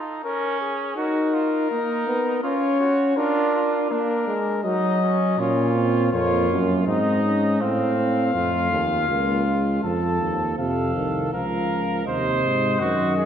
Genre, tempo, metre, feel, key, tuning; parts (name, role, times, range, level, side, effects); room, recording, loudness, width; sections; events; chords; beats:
classical, imitative canzona for brass ensemble; 81 BPM; 3/4; straight; A4 = 440 Hz
mellow trumpet; second line; 0.0-13.3 s; C4 to C5; -27 LUFS; right 4 dB
mellow cornet; melody; 0.2-13.3 s; Ab4 to A5; -26 LUFS; left 7 dB
mellow trombone; accompaniment; 1.0-13.3 s; C3 to Eb4; -24 LUFS; right 1 dB
mellow bass trombone; bass; 5.4-13.3 s; C2 to Bb2; -23 LUFS; right 1 dB
wet recital hall reverb, RT60 1.5 s; -20 LUFS; side -8 dB against mid
0.0-9.8 A section; 9.8-13.3 B section
0.2 Bbm/Db; 1.0 Ebm; 2.4 Db; 3.2 Bb/D; 4.6 Ebm/Gb; 5.4 Bbm; 6.9 Ab; 7.6 F/A; 9.1 Bbm/Db; 9.8 F; 11.3 Bbm/Db; 12.1 Cdim/Eb
0.24 | 0.97 1.71 2.44 | 3.17 3.91 4.65 | 5.39 6.13 6.87 | 7.61 8.35 9.09 | 9.83 10.58 11.32 | 12.06 12.80